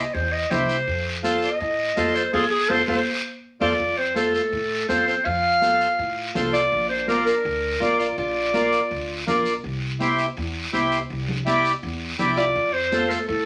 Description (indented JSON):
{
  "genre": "latin, cumbia",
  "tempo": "164 BPM",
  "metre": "4/4",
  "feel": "straight",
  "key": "F major",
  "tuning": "A4 = 439 Hz",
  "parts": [
    { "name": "warm clarinet", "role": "melody", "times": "0.0-9.2, 12.4-13.5 s", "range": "Ab4 to F5", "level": "-24 LUFS", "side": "equal", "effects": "none" },
    { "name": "accordion", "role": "accompaniment", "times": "0.0-13.2 s", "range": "E4 to D5", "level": "-26 LUFS", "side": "equal", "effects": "none" },
    { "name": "upright bass", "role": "bass", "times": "0.1-13.5 s", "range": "Bb1 to A2", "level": "-35 LUFS", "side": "equal", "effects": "none" },
    { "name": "congas", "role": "percussion", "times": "0.1-13.5 s", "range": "none", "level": "-33 LUFS", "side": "equal", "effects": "none" },
    { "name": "guiro", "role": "percussion", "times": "0.1-13.5 s", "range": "none", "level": "-36 LUFS", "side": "equal", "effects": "none" },
    { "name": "direct-recorded clean electric guitar", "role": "second line", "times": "3.6-9.2, 12.4-13.5 s", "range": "A3 to F4", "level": "-36 LUFS", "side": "equal", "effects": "none" }
  ],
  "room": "wet studio reverb, RT60 0.6 s",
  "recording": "none",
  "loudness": "-23 LUFS",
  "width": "mono",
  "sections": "0.0-3.8 A section; 3.8-13.5 B section",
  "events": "clarinet solo 0.0-3.8; band accent 2.3-3.8; drum fill 3.1-3.8",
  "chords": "0.0 C; 0.9 F; 6.7 Bb; 9.6 C; 12.6 F",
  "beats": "0.14 0.51 | 0.87 1.24 1.60 1.97 | 2.33 2.70 3.07 3.43 | 3.80 4.16 4.53 4.89 | 5.26 5.62 5.99 6.35 | 6.72 7.08 7.45 7.81 | 8.18 8.54 8.91 9.27 | 9.64 10.00 10.37 10.73 | 11.10 11.46 11.83 12.19 | 12.56 12.92 13.29"
}